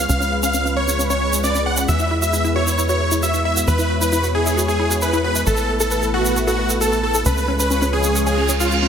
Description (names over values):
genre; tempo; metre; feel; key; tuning
uplifting trance; 134 BPM; 4/4; straight; unclear; A4 = 440 Hz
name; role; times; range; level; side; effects
big supersaw lead; melody; 0.0-8.9 s; E#4 to F#5; -20 LUFS; equal; digital delay
analog string pad; sustained chords; 0.0-8.9 s; G#3 to C#5; -24 LUFS; equal; ensemble chorus
wide unison pluck; arpeggios; 0.0-8.9 s; C#4 to B4; -26 LUFS; left 2 dB; dub echo
tight sequencer bass; bass; 0.0-8.9 s; A1 to E2; -22 LUFS; equal; none
egg shaker; percussion; 0.1-8.8 s; none; -25 LUFS; right 3 dB; none
reverse cymbal; sound effects; 8.3-8.9 s; none; -23 LUFS; right 6 dB; none
room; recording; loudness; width
moderate lush hall reverb, RT60 2.5 s; none; -16 LUFS; side -8 dB against mid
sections
0.0-8.9 A section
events
filter sweep on synth arpeggio sound 0.0-8.9; reverse cymbal 8.3-8.9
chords
0.0 C#7; 1.9 E; 5.5 Asus2; 7.3 C#